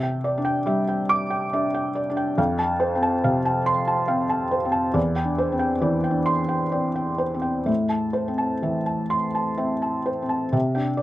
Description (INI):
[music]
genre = neoclassical minimalist piano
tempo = 62-71 BPM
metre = 3/4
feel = rubato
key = C major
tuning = A4 = 437 Hz
[part]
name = felt-muted upright piano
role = solo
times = 0.0-11.0 s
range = E2 to D6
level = -21 LUFS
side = equal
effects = none
[sound]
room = light reverb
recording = recorded outdoors, with no room sound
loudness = -21 LUFS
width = side -15 dB against mid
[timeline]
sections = 0.0-10.5 A section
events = none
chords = 0.0 Cadd9; 2.4 F; 5.0 Cadd9/E; 7.7 Am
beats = 0.67 1.53 | 2.38 3.24 4.10 | 4.96 5.83 6.74 | 7.69 8.64 9.60 | 10.54